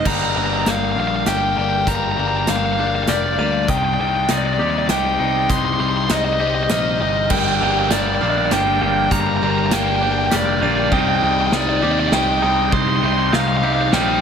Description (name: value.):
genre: post-rock.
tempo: 99 BPM.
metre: 3/4.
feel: straight.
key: C minor.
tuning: A4 = 440 Hz.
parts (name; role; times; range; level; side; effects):
nasal lead guitar with a parked wah; melody; 0.0-14.2 s; D5 to C6; -20 LUFS; right 1 dB; overdrive, analog delay.
glockenspiel with soft plastic mallets; arpeggios; 0.0-14.2 s; D6 to Eb7; -29 LUFS; right 6 dB; analog delay.
twangy electric guitar; arpeggios; 0.0-14.2 s; C3 to G4; -28 LUFS; left 3 dB; analog delay.
overdriven electric guitar; riff; 0.0-0.1, 7.3-14.2 s; G2 to Eb4; -23 LUFS; right 13 dB; phaser.
picked electric bass; bass; 0.0-14.2 s; F1 to Eb2; -24 LUFS; equal; none.
overdriven semi-hollow guitar; riff; 0.1-14.2 s; G2 to Eb4; -22 LUFS; left 12 dB; phaser.
loose indie drum kit; drums; 0.1-14.1 s; crash cymbal, hi-hat, kick drum, snare drum; -24 LUFS; right 1 dB; none.
room: moderate lush hall reverb, RT60 3.0 s.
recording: none.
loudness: -16 LUFS.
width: side -7 dB against mid.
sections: 0.1-14.2 A section.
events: build-up 0.1-14.2.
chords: 0.1 Gm; 3.7 Cm; 7.3 Gm; 10.9 Cmadd9.